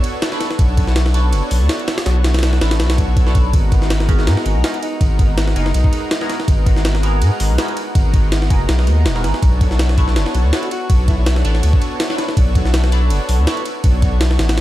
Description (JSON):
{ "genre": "drum and bass, jungle", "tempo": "163 BPM", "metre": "4/4", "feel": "swing 54% on 16ths", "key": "unclear", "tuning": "A4 = 440 Hz", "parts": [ { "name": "lush unison pad", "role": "sustained chords", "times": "0.0-14.6 s", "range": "G#3 to C#5", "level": "-25 LUFS", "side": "equal", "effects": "chorus" }, { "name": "jungle sampler-style drum kit", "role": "drums", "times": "0.0-14.6 s", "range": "hi-hat, kick drum, ride cymbal, snare drum", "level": "-17 LUFS", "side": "equal", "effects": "none" }, { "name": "band-passed chord stab", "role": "stabs", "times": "0.3-13.6 s", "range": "B3 to C#5", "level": "-27 LUFS", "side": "right 1 dB", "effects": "phaser, wide subtle chorus, dub echo" }, { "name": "saturated sub bass", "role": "bass", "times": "0.6-14.6 s", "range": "D#1 to G#2", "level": "-15 LUFS", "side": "equal", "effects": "none" }, { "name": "warm alto saxophone", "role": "melody", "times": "4.6-6.3, 10.5-11.2 s", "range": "D#4 to F#4", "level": "-29 LUFS", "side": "equal", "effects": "vintage 12-bit sampler grit, dub echo" } ], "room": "little or no reverb", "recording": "dark, warm production", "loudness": "-13 LUFS", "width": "side -15 dB against mid", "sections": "0.0-14.6 A section", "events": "none", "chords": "0.0 Bm9; 3.5 G#m9; 9.4 Bm9", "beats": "0.22 | 0.59 0.96 1.33 1.69 | 2.06 2.43 2.80 3.17 | 3.54 3.90 4.27 4.64 | 5.01 5.38 5.74 6.11 | 6.48 6.85 7.22 7.58 | 7.95 8.32 8.69 9.06 | 9.42 9.79 10.16 10.53 | 10.90 11.27 11.63 12.00 | 12.37 12.74 13.11 13.47 | 13.84 14.21 14.58" }